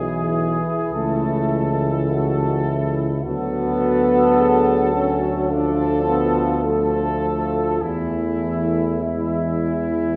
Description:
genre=classical, hymn-like piece for brass band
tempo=46-54 BPM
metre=4/4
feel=rubato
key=unclear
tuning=A4 = 441 Hz
part: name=mellow trumpet section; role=melody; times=0.0-10.2 s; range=E4 to A4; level=-28 LUFS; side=equal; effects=none
part: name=dark French horn section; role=second line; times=0.0-10.2 s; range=E4 to A4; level=-30 LUFS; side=equal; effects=none
part: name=clear euphonium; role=accompaniment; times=0.0-10.2 s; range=E3 to F#3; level=-29 LUFS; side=equal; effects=none
part: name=mellow trombone section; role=accompaniment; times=0.0-10.2 s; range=E3 to D4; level=-25 LUFS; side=equal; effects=none
part: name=warm tuba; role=bass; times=0.0-10.2 s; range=B1 to E2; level=-25 LUFS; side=equal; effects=none
room=wet concert hall reverb, RT60 1.9 s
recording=recorded in a church or concert hall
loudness=-20 LUFS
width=mono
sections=0.0-10.2 A section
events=none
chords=0.0 E/B; 0.9 A/C#; 3.2 D; 5.5 Dm; 7.8 E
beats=0.93 2.11 | 3.24 4.37 5.50 6.64 | 7.83 9.03

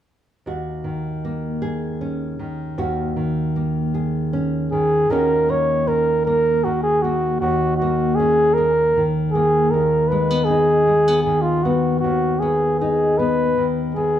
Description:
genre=acoustic folk-pop ballad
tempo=52 BPM (dotted quarters)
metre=6/8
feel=straight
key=Eb minor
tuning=A4 = 440 Hz
part: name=nylon-string guitar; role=accompaniment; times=0.5-14.2 s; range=Eb2 to Ab4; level=-21 LUFS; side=equal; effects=none
part: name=mellow flugelhorn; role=melody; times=4.7-14.2 s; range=F4 to Db5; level=-17 LUFS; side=equal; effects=none
room=wet large studio reverb, RT60 1.1 s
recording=band playing live in one room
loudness=-17 LUFS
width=side -10 dB against mid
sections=0.5-5.1 A section; 5.1-14.2 B section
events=none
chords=0.5 Ebm7; 9.7 Abm/Eb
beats=| 0.46 1.62 | 2.78 3.94 | 5.09 6.25 | 7.41 8.56 | 9.72 10.88 | 12.03 13.19

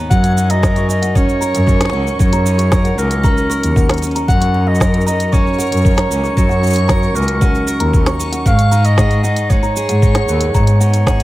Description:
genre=folktronica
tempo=115 BPM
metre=4/4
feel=straight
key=F# major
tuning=A4 = 440 Hz
part: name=picked steel-string acoustic guitar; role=arpeggios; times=0.0-11.2 s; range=G#2 to A#4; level=-21 LUFS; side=equal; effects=none
part: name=backwards swelling texture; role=texture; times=0.0-11.2 s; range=G#5 to C#6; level=-31 LUFS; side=equal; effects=built-in reverb
part: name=warm clarinet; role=melody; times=0.1-11.2 s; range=A#4 to F#5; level=-20 LUFS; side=right 1 dB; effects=tape echo
part: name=kalimba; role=second line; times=0.1-11.2 s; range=F#5 to C#6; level=-25 LUFS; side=left 1 dB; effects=tape echo
part: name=muted cello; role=bass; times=0.1-11.2 s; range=C#2 to G#2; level=-16 LUFS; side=equal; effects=none
part: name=electronic kick drum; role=drums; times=0.1-11.2 s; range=none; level=-15 LUFS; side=equal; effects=none
part: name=organic electronic drum kit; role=drums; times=0.1-11.2 s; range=cabasa, hi-hat, snare drum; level=-23 LUFS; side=right 1 dB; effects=overdrive
room=little or no reverb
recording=none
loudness=-12 LUFS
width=side -16 dB against mid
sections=0.1-11.2 A section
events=none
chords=0.1 F#6; 8.5 G#m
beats=| 0.11 0.63 1.15 1.68 | 2.20 2.72 3.24 3.76 | 4.28 4.81 5.33 5.85 | 6.37 6.89 7.41 7.94 | 8.46 8.98 9.50 10.02 | 10.54 11.07

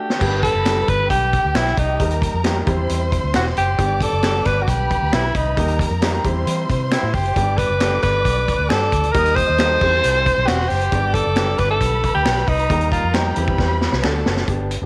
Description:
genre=uptempo 1960s-style soul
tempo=135 BPM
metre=4/4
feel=straight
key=G major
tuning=A4 = 440 Hz
part: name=breathy tenor saxophone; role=melody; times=0.0-13.8 s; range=Eb4 to C5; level=-22 LUFS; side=equal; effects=none
part: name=warm grand piano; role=accompaniment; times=0.0-14.9 s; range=G3 to E5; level=-29 LUFS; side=equal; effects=none
part: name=vintage drum kit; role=drums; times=0.1-14.8 s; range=crash cymbal, hi-hat, kick drum, snare drum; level=-25 LUFS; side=equal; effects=none
part: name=warm studio violin section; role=second line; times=0.2-14.5 s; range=G4 to Eb6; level=-29 LUFS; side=equal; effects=none
part: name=vintage muted fingered electric bass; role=bass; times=0.2-14.9 s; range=E1 to E3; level=-24 LUFS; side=equal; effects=none
part: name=electric guitar through a small old amp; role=stabs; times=0.7-14.1 s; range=A3 to G4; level=-35 LUFS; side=equal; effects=none
part: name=finger snap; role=percussion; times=0.7-14.1 s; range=none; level=-33 LUFS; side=equal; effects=none
room=light reverb, small room ambience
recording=none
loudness=-18 LUFS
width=mono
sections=0.2-14.5 A section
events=break 0.0; grand piano fill 0.0; drum fill 0.0, 13.6-14.5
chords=0.2 G; 2.0 Eb; 2.7 C/E; 3.8 G; 5.6 Eb; 6.2 C/E; 7.4 G; 9.1 Eb; 9.8 C; 10.9 G; 12.7 Eb; 13.4 C/E; 14.0 D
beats=| 0.21 0.66 1.11 1.55 | 2.00 2.45 2.90 3.34 | 3.79 4.24 4.68 5.13 | 5.58 6.02 6.47 6.92 | 7.36 7.81 8.25 8.70 | 9.14 9.59 10.03 10.48 | 10.92 11.37 11.81 12.26 | 12.70 13.15 13.59 14.04 | 14.48

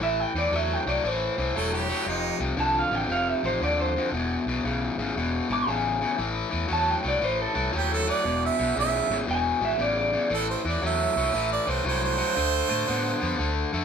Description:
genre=electric blues shuffle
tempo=116 BPM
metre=4/4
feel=swing 66% on 8ths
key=A minor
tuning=A4 = 440 Hz
part: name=electric guitar through a small old amp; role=melody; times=0.0-10.3 s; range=A4 to D6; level=-26 LUFS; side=equal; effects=none
part: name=overdriven semi-hollow guitar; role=riff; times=0.0-13.8 s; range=E2 to B3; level=-27 LUFS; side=left 4 dB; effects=none
part: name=vintage muted fingered electric bass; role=bass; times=0.0-13.8 s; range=E1 to A2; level=-31 LUFS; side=right 1 dB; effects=none
part: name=clear harmonica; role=second line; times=1.6-2.4, 7.8-13.5 s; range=Eb4 to E5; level=-27 LUFS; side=right 8 dB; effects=none
room=moderate studio reverb, RT60 0.6 s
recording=band playing live in one room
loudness=-23 LUFS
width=side -7 dB against mid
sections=0.0-10.3 A section; 10.3-13.8 B section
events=harmonica solo 10.3-13.8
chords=0.0 Am; 2.1 F7; 4.1 E; 6.2 A5; 8.3 E; 10.3 Am; 12.4 Dm7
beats=| 0.01 0.53 1.04 1.56 | 2.07 2.59 3.10 3.62 | 4.13 4.65 5.16 5.68 | 6.19 6.71 7.22 7.74 | 8.25 8.77 9.28 9.80 | 10.31 10.83 11.35 11.86 | 12.38 12.89 13.41

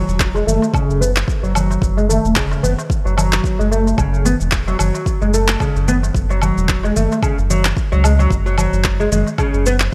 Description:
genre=organic downtempo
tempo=111 BPM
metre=4/4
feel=swing 55% on 16ths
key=F# minor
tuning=A4 = 443 Hz
part: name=oud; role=arpeggios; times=0.0-9.7 s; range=C#3 to B3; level=-21 LUFS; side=equal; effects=low-pass filter, delay
part: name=round analog bass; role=bass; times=0.0-9.9 s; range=E1 to C#2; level=-20 LUFS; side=equal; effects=sidechain pumping
part: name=electronic shaker, handclaps and woodblock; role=drums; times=0.1-9.9 s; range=none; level=-24 LUFS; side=equal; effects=none
part: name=electronic kick drum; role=drums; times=0.2-9.5 s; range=none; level=-22 LUFS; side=equal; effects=overdrive
part: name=darbuka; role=percussion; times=0.4-9.5 s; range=none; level=-28 LUFS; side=equal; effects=none
room=little or no reverb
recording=none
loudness=-16 LUFS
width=mono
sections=0.0-9.9 A section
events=filter sweep on oud 0.0-9.9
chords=0.0 F#5; 8.3 N.C.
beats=0.20 0.74 1.28 | 1.82 2.36 2.90 3.44 | 3.98 4.53 5.07 5.61 | 6.15 6.69 7.23 7.77 | 8.31 8.85 9.39

